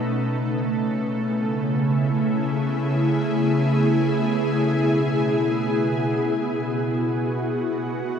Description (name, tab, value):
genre	ambient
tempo	free time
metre	none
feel	none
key	unclear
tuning	A4 = 440 Hz
part	ethereal airy pad	solo	0.0-8.2 s	B2 to B4	-20 LUFS	equal	ensemble chorus, built-in reverb, ping-pong delay
room	wet huge ambient reverb, RT60 7.5 s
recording	none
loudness	-20 LUFS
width	side -7 dB against mid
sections	0.0-8.2 A section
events	none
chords	0.2 Amaj9/C#; 4.6 Eadd9/B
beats	free time